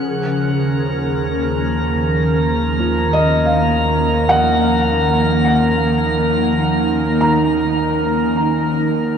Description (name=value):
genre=ambient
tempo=free time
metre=none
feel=none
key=unclear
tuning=A4 = 440 Hz
part: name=ethereal airy pad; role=sustained chords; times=0.0-9.2 s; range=D#3 to A#4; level=-18 LUFS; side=equal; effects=ensemble chorus, built-in reverb
part: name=warm sub bass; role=bass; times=0.0-9.2 s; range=D#2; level=-25 LUFS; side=right 1 dB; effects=none
part: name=organ-like drone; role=drone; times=0.0-9.2 s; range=E#3 to C#4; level=-26 LUFS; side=right 1 dB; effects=ensemble chorus, built-in reverb
part: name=drifting glass-harmonics texture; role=texture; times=0.0-9.2 s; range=A#4 to A#5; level=-21 LUFS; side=equal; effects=chorus, built-in reverb
part: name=felt-muted upright piano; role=arpeggios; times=2.8-9.2 s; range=E#3 to A#5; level=-20 LUFS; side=equal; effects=tape echo
room=wet huge ambient reverb, RT60 8.2 s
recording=cassette tape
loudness=-14 LUFS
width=side -7 dB against mid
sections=0.0-9.2 A section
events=fade-out on sub bass 0.0-9.2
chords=0.0 D#m7